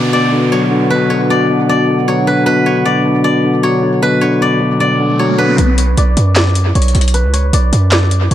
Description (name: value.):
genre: hip hop, trap.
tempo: 154 BPM.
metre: 4/4.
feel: half-time.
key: B minor.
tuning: A4 = 440 Hz.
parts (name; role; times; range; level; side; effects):
steel-string zither; melody; 0.0-8.3 s; B3 to D5; -17 LUFS; left 1 dB; low-pass filter, analog delay.
barky tine electric piano; accompaniment; 0.0-5.6 s; B2 to F#3; -13 LUFS; left 2 dB; overdrive, low-pass filter.
warbly tape-like pad; sustained chords; 0.0-5.5 s; D4 to F#5; -20 LUFS; right 1 dB; chorus, built-in reverb.
downlifter and riser; sound effects; 0.0-5.6 s; none; -23 LUFS; right 1 dB; none.
hard-hitting 808-style bass; bass; 5.6-8.3 s; B1 to F#2; -11 LUFS; right 1 dB; none.
trap drum kit; drums; 5.6-8.3 s; handclaps, hi-hat, snare drum; -17 LUFS; equal; vintage 12-bit sampler grit, analog delay.
room: light reverb.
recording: echo-heavy mix.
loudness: -10 LUFS.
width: side -12 dB against mid.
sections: 0.0-5.6 A section; 5.6-8.3 B section.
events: riser 4.7-5.6; filter sweep 5.6-8.3.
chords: 0.0 Bm.